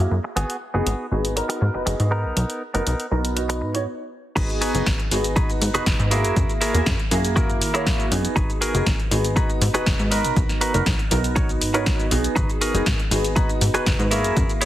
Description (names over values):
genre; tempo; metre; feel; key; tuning
filtered disco house; 120 BPM; 4/4; straight; G# minor; A4 = 442 Hz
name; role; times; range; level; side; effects
warm concert grand piano; accompaniment; 0.0-14.7 s; A#3 to A#5; -25 LUFS; right 1 dB; phaser, sidechain pumping, low-pass filter
direct-recorded clean electric guitar; riff; 0.0-14.7 s; B3 to C#5; -26 LUFS; right 1 dB; sidechain pumping, low-pass filter
plucky analog bass; bass; 0.0-14.4 s; F#1 to D#3; -23 LUFS; equal; tube saturation, sidechain pumping, low-pass filter
punchy analog drum machine; drums; 0.0-14.7 s; crash cymbal, hi-hat, shaker, snare drum; -27 LUFS; left 1 dB; sidechain pumping on hats, sidechain pumping on cymbals, sidechain pumping on perc
electronic kick drum; drums; 4.4-14.5 s; none; -23 LUFS; equal; none
room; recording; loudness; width
light reverb; heavily compressed radio sound; -19 LUFS; side -13 dB against mid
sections
0.0-4.4 A section; 4.4-14.7 B section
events
filter sweep 0.0-4.4; stop 3.9-4.4; drop 4.4-14.7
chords
0.4 G#m7; 2.1 Bmaj7; 4.4 G#m7; 6.1 F#9; 8.4 G#m7; 10.1 Bmaj7; 12.4 G#m7; 14.1 F#9